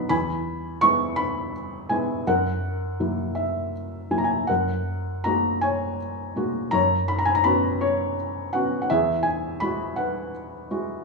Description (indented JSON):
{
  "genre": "classical, lyrical solo piano",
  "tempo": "55 BPM (dotted quarters)",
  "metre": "6/8",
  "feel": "rubato",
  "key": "unclear",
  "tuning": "A4 = 439 Hz",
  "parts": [
    { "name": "felt-muted upright piano", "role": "solo", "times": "0.0-11.0 s", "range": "E2 to C#6", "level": "-22 LUFS", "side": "equal", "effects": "none" }
  ],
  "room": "moderate recital hall reverb, RT60 1.5 s",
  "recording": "small room reverb",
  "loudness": "-22 LUFS",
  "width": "side -2 dB against mid",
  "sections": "0.0-11.0 A section",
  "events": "none",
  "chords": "0.1 E; 2.3 F#7; 4.5 F#add9; 6.7 Bsus2/F#; 8.9 Eadd9"
}